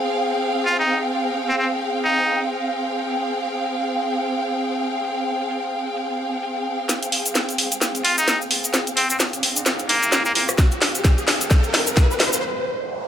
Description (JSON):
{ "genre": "bass house", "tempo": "130 BPM", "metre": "4/4", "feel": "swing 58% on 16ths", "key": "F minor", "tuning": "A4 = 440 Hz", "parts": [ { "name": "warm symphonic string section", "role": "texture", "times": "0.0-12.4 s", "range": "C4 to G5", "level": "-24 LUFS", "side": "equal", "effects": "sidechain pumping" }, { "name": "garage drum kit", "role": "drums", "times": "0.1-12.4 s", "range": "hi-hat, rim click, snare drum", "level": "-20 LUFS", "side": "equal", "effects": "high-pass filter on hats, low-pass filter on hats, high-pass filter on snare, low-pass filter on snare, high-pass filter on room, low-pass filter on room" }, { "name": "trumpet with straight mute", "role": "melody", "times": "0.7-2.4, 8.0-10.4 s", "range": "Bb3 to F4", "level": "-22 LUFS", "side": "equal", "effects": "dub echo" }, { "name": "tube shaker", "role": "percussion", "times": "6.9-12.4 s", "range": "none", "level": "-26 LUFS", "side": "left 2 dB", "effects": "none" }, { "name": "riser and noise sweep", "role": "sound effects", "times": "8.0-13.1 s", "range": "none", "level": "-28 LUFS", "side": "equal", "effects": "none" }, { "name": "electronic kick drum", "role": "drums", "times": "10.6-12.1 s", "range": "none", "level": "-16 LUFS", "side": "equal", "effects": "none" } ], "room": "moderate plate reverb, RT60 1.4 s, studio reverb", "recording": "none", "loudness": "-18 LUFS", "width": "side -9 dB against mid", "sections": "0.0-6.9 A section; 6.9-13.1 B section", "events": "build-up 6.9-13.1; drum fill 6.9-12.4; riser 8.0-12.4; break 12.4-13.1; noise sweep 12.4-13.1", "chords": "0.0 Fmadd9" }